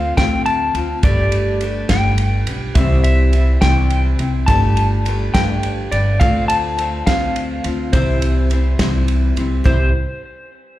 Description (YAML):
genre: indie folk with a building arrangement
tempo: 70 BPM (dotted quarters)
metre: 6/8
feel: straight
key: C major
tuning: A4 = 440 Hz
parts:
  - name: clean electric guitar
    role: melody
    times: 0.0-9.9 s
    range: C5 to A5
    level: -22 LUFS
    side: left 1 dB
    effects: tremolo, slapback echo, tape echo
  - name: picked steel-string acoustic guitar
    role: accompaniment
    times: 0.0-9.9 s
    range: C3 to C5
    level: -23 LUFS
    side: left 3 dB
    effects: slapback echo
  - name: upright bass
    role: bass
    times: 0.0-9.9 s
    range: G1 to D2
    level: -17 LUFS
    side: equal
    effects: none
  - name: loose indie drum kit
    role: drums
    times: 0.2-9.8 s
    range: kick drum, ride cymbal, snare drum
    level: -20 LUFS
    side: equal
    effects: none
  - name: dark upright piano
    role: accompaniment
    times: 2.8-9.9 s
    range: G1 to F5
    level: -29 LUFS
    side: right 2 dB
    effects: slapback echo
room: small room ambience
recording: live gig heard through the venue's PA, club reverb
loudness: -14 LUFS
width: side -15 dB against mid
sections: 0.0-9.7 A section; 9.7-10.8 B section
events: none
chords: 0.0 Dm7; 1.0 Gadd9; 2.8 C; 4.5 Gadd9; 6.2 Dm7; 7.9 C